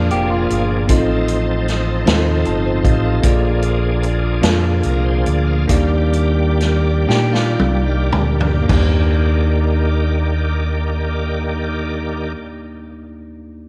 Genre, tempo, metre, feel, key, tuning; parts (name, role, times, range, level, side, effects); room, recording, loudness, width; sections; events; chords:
slow gospel; 34-51 BPM (dotted quarters); 6/8; straight; Eb major; A4 = 440 Hz
clean electric guitar; second line; 0.0-0.9, 7.1-8.7 s; Eb4 to G4; -27 LUFS; equal
bell-like tine electric piano; accompaniment; 0.0-13.7 s; Eb2 to A5; -24 LUFS; equal
bright tonewheel organ; sustained chords; 0.0-12.3 s; Eb3 to F5; -26 LUFS; equal; slow rotary speaker, chorus vibrato
fingered electric bass; bass; 0.0-12.3 s; F1 to Bb2; -20 LUFS; equal
swinging big-band drum kit; drums; 0.1-9.0 s; crash cymbal, hi-hat, kick drum, snare drum, toms; -21 LUFS; equal
moderate echo chamber reverb, RT60 2.7 s; -17 LUFS; mono
0.0-8.7 A section; 8.7-12.2 B section
tine electric piano fill 2.1-3.2; slowing down 3.2-8.7; drum fill 7.1-8.7
0.0 Bb7; 0.9 F7/A; 3.2 Bb7; 5.7 Ebmaj7